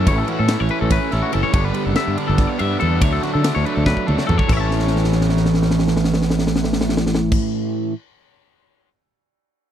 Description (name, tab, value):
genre	math rock and midwest emo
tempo	286 BPM (eighths)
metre	7/8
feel	straight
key	A mixolydian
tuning	A4 = 440 Hz
part	twangy electric guitar	arpeggios	0.0-7.4 s	F#4 to A5	-25 LUFS	left 9 dB	none
part	overdriven semi-hollow guitar	riff	0.0-7.9 s	G2 to E4	-21 LUFS	right 2 dB	none
part	fingered electric bass	bass	0.0-7.4 s	F#1 to D3	-19 LUFS	equal	none
part	crisp fusion drum kit	drums	0.1-8.9 s	crash cymbal, kick drum, ride cymbal, snare drum, toms	-21 LUFS	equal	none
room	little or no reverb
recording	dry, close 1970s-style studio recording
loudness	-16 LUFS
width	side -10 dB against mid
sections	0.0-4.5 A section; 4.5-7.4 B section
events	drum fill 3.9-4.5, 4.7-7.3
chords	0.0 A6; 1.5 Gadd9(#11); 3.0 Dmaj7; 4.5 A